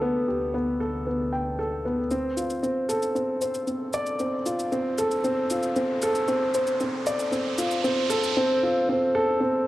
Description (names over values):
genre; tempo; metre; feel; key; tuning
piano and strings electronica; 115 BPM; 4/4; straight; unclear; A4 = 440 Hz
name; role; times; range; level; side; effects
dark baby grand piano; riff; 0.0-9.7 s; B3 to G5; -23 LUFS; equal; tape echo
clear chamber double bass section; bass; 0.0-2.1 s; D2; -36 LUFS; right 1 dB; tube saturation
shaker; drums; 2.1-8.3 s; none; -37 LUFS; equal; small room reverb, cassette tape
riser; sound effects; 3.9-8.4 s; none; -35 LUFS; right 3 dB; none
room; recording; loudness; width
wet spring reverb, RT60 2.0 s, small room ambience; home recording on cassette; -23 LUFS; side -15 dB against mid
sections
0.0-2.1 A section; 2.1-9.7 B section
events
build-up 2.1-9.7; riser 3.9-8.4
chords
0.0 Gadd9/D; 2.1 Dm7